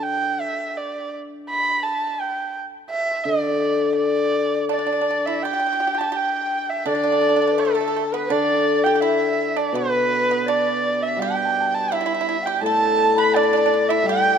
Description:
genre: chinese traditional, Chinese chamber ensemble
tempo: 84 BPM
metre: 2/4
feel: straight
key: D zhi mode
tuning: A4 = 439 Hz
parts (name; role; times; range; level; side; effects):
- dark erhu; melody; 0.0-14.4 s; A4 to B5; -22 LUFS; right 3 dB; none
- hammered dulcimer; accompaniment; 0.0-0.4, 3.2-14.4 s; A2 to G3; -23 LUFS; left 4 dB; none
- hollow large dizi; second line; 4.7-14.4 s; A4 to B5; -26 LUFS; left 5 dB; none
- pipa; second line; 4.7-14.4 s; A3 to B4; -27 LUFS; right 10 dB; none
room: moderate concert hall reverb, RT60 2.1 s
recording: close, detailed microphones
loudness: -18 LUFS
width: side -7 dB against mid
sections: 0.0-5.4 A section; 5.4-14.4 B section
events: none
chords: none

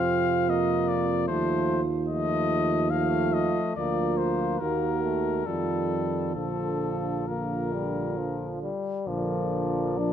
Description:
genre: classical, hymn-like piece for brass band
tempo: 64-76 BPM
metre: 3/4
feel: rubato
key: Bb major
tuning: A4 = 441 Hz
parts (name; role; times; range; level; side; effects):
- warm cornet; melody; 0.0-10.1 s; A4 to F5; -31 LUFS; left 8 dB; none
- mellow French horn section; second line; 0.0-10.1 s; F4 to Bb4; -30 LUFS; right 8 dB; none
- clear euphonium; accompaniment; 0.0-10.1 s; F3 to D4; -32 LUFS; left 3 dB; none
- warm trombone; accompaniment; 0.0-10.1 s; C3 to F3; -34 LUFS; right 2 dB; none
- mellow tuba; bass; 0.0-10.1 s; Bb1 to F2; -31 LUFS; equal; none
room: moderate scoring stage reverb, RT60 1.6 s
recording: close, detailed microphones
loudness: -24 LUFS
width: side -9 dB against mid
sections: 0.0-9.1 A section; 9.1-10.1 B section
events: none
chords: 0.0 F5; 1.3 F7/Eb; 3.8 Bb/D; 4.6 Ebm; 5.5 F9; 6.4 Bb

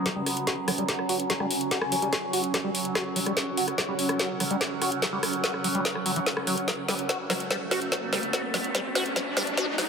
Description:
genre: psychedelic trance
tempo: 145 BPM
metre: 4/4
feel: straight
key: F# minor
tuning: A4 = 442 Hz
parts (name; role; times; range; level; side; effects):
- overtone-sweeping drone; sustained chords; 0.0-9.9 s; F#3 to C#4; -32 LUFS; right 1 dB; chorus, built-in reverb, phaser, sidechain pumping
- granular cloud pad; texture; 0.0-9.9 s; C#4 to F#5; -34 LUFS; right 2 dB; built-in reverb, sidechain pumping
- liquid acid bass; riff; 0.1-9.8 s; E3 to F#4; -32 LUFS; equal; phaser, auto-pan, sidechain pumping, tape echo
- electronic kick drum; drums; 0.1-9.7 s; none; -40 LUFS; equal; high-pass filter on kick, high-pass filter on room
- garage drum kit; drums; 0.1-9.9 s; hi-hat, rim click, snare drum; -28 LUFS; left 1 dB; none
- riser; sound effects; 7.4-9.9 s; none; -34 LUFS; equal; none
room: moderate plate reverb, RT60 2.0 s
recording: high-pass filter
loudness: -24 LUFS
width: side -6 dB against mid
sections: 0.1-9.9 A section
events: build-up 0.1-9.9; drum fill 0.1-9.9; filter sweep on acid bass 0.1-9.9; riser 7.4-9.9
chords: 0.1 F#5

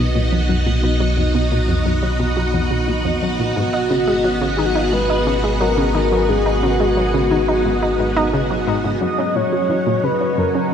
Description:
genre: ambient, sequencer-driven space music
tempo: 88 BPM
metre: 4/4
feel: straight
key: unclear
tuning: A4 = 437 Hz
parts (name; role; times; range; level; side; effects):
- string machine, full ensemble; sustained chords; 0.0-10.7 s; F#3 to F#5; -20 LUFS; equal; ensemble chorus
- analog pluck; riff; 0.0-10.6 s; F2 to Eb4; -21 LUFS; equal; chorus, ping-pong delay
- warm sub bass; bass; 0.0-9.0 s; Ab1 to B1; -22 LUFS; equal; none
- breathy flute-like synth lead; melody; 3.6-10.7 s; F4 to D#5; -20 LUFS; left 1 dB; analog chorus, ping-pong delay
room: wet cathedral reverb, RT60 5.7 s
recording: dreamy mix soaked in reverb, cassette tape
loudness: -15 LUFS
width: side -8 dB against mid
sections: 0.0-9.0 A section; 9.0-10.7 B section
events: filter sweep on synth arpeggio sound 0.0-9.0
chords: 0.0 B; 3.6 Abm7; 9.0 F#

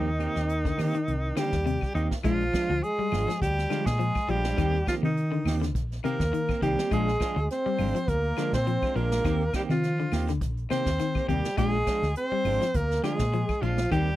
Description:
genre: afrobeat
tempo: 103 BPM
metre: 4/4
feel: swing 55% on 16ths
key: Bb mixolydian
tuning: A4 = 442 Hz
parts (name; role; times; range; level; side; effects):
- breathy tenor saxophone; melody; 0.0-14.2 s; Eb4 to C5; -30 LUFS; equal; none
- clear trombone; second line; 0.0-14.2 s; Eb3 to C4; -34 LUFS; right 2 dB; slapback echo
- electric guitar at the edge of break-up; arpeggios; 0.0-14.1 s; C3 to Ab3; -32 LUFS; left 7 dB; spring reverb
- clean electric guitar; stabs; 0.0-14.1 s; Eb3 to G4; -33 LUFS; right 6 dB; harmonic tremolo
- hollow-body short-scale fingered electric bass; bass; 0.0-14.1 s; Ab1 to Eb3; -28 LUFS; equal; none
- jazz brush drum kit; drums; 0.2-14.2 s; hi-hat, kick drum, snare drum; -33 LUFS; equal; none
- claves; percussion; 0.2-14.1 s; none; -42 LUFS; left 16 dB; none
room: little or no reverb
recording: dry, close 1970s-style studio recording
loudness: -24 LUFS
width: side -14 dB against mid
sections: 0.0-2.2 A section; 2.2-14.2 B section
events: none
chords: 0.0 Eb6; 2.2 Bb7; 4.6 Eb6; 6.9 Bb7; 9.2 Eb6; 11.6 Bb7

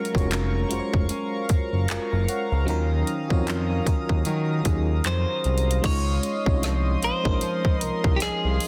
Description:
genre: contemporary R&B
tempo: 76 BPM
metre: 4/4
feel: swing 58% on 16ths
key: Db major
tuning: A4 = 440 Hz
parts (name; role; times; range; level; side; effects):
- FM electric piano with tremolo; accompaniment; 0.0-8.7 s; Gb3 to Bb5; -33 LUFS; equal; none
- chorused pulse-width pad; sustained chords; 0.0-8.7 s; Db4 to Eb6; -36 LUFS; equal; none
- nylon-string guitar; arpeggios; 0.0-8.7 s; Eb3 to Bb4; -36 LUFS; equal; tape echo
- trap drum kit; drums; 0.1-8.7 s; crash cymbal, handclaps, hi-hat, kick drum, snare drum; -28 LUFS; equal; none
- smooth synth bass; bass; 0.2-8.6 s; F1 to Eb3; -27 LUFS; equal; none
- clean electric guitar; melody; 5.1-8.7 s; G4 to Db5; -30 LUFS; equal; tape echo
room: light reverb, digital ambience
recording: dense, heavily limited modern master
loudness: -24 LUFS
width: mono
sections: 0.0-5.8 A section; 5.8-8.7 B section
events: none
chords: 0.0 Gbmaj7; 2.7 Ebm9; 5.8 Dbmaj9

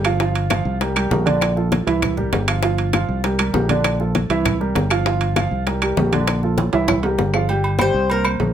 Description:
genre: latin, salsa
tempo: 198 BPM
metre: 4/4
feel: straight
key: unclear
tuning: A4 = 440 Hz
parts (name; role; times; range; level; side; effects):
- warm upright piano; accompaniment; 0.0-8.5 s; D3 to G5; -21 LUFS; right 4 dB; none
- fingered electric bass; bass; 0.0-8.5 s; G1 to C2; -21 LUFS; equal; none
- claves; percussion; 0.0-8.4 s; none; -28 LUFS; left 6 dB; none
- congas; percussion; 0.0-8.5 s; none; -25 LUFS; left 2 dB; none
- timbales and agogo bells; percussion; 0.0-8.5 s; none; -25 LUFS; right 5 dB; none
- bongos; percussion; 0.2-7.3 s; none; -27 LUFS; left 11 dB; none
- Cuban tres; melody; 7.8-8.3 s; Bb4 to C5; -22 LUFS; left 5 dB; none
room: light reverb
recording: none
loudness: -16 LUFS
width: side -9 dB against mid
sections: 0.0-7.5 A section; 7.5-8.5 B section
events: drum fill 6.6-7.5; Cuban tres solo 7.5-8.5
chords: 0.2 G7sus4; 0.8 C5; 1.4 Bbmaj7; 2.0 C7; 2.6 G7sus4; 3.2 C5; 3.8 Bbmaj7; 4.5 C7; 5.1 G7sus4; 5.7 C5; 6.3 Bbmaj7; 6.9 C7; 7.5 Gsus4

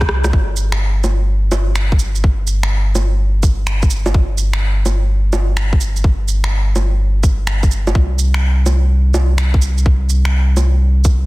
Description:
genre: future garage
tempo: 126 BPM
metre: 4/4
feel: swing 67% on 16ths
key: unclear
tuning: A4 = 440 Hz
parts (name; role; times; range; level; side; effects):
- soft dub sub bass; bass; 0.0-11.3 s; G1 to C2; -14 LUFS; equal; sidechain pumping
- electronic kick drum; drums; 0.0-11.2 s; none; -14 LUFS; equal; none
- electronic rim click, bongos, shaker and finger snaps; drums; 0.0-11.2 s; none; -22 LUFS; right 2 dB; soft clipping on snare
room: little or no reverb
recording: dense, heavily limited modern master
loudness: -13 LUFS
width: side -20 dB against mid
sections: 0.3-11.3 A section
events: drum fill 0.0-0.3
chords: none

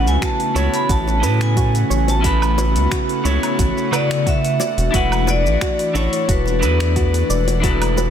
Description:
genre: sunset chillout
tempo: 89 BPM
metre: 4/4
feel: swing 53% on 16ths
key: A major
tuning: A4 = 440 Hz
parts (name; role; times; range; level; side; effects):
- clean electric guitar; accompaniment; 0.0-8.1 s; C#3 to C#6; -23 LUFS; moving between left 2 dB and right 5 dB; auto-pan, vintage 12-bit sampler grit, tape echo
- airy breathy pad; sustained chords; 0.0-8.1 s; C#3 to F#4; -24 LUFS; left 2 dB; chorus
- soft round pluck; arpeggios; 0.0-8.1 s; D4 to D5; -29 LUFS; right 4 dB; chorus, tape echo
- round analog bass; bass; 0.0-8.1 s; E1 to A2; -18 LUFS; equal; none
- vibraphone with hard mallets; melody; 0.1-8.1 s; B4 to B5; -22 LUFS; equal; tape echo
- deep house drum kit; drums; 0.1-8.1 s; finger snaps, hi-hat, shaker, woodblock; -28 LUFS; equal; small room ambience, soft clipping on snare
- electronic kick drum; drums; 0.2-7.8 s; none; -21 LUFS; equal; small room ambience
- bongos; percussion; 1.1-8.1 s; none; -30 LUFS; left 9 dB; none
room: light reverb, digital ambience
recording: dense, heavily limited modern master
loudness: -15 LUFS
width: side -9 dB against mid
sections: 0.0-8.1 A section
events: none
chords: 0.0 A69; 4.6 E9sus4

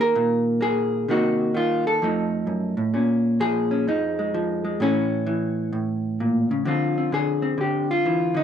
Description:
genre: solo jazz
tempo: 129 BPM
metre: 4/4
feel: swing 66% on 8ths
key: unclear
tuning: A4 = 440 Hz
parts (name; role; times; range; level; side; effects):
- vintage hollow-body jazz guitar; solo; 0.0-8.4 s; F2 to Bb4; -20 LUFS; equal; none
room: moderate studio reverb, RT60 0.5 s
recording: worn, warbling old tape, cassette tape, warbly pitch drift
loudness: -20 LUFS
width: side -8 dB against mid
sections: 0.0-6.7 A section; 6.7-8.4 B section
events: hollow-body jazz guitar solo 6.7-8.4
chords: 0.0 Eb7(no3); 1.1 Cm7b5; 2.0 F7; 2.9 Bbm7; 4.8 A; 6.7 Dm7

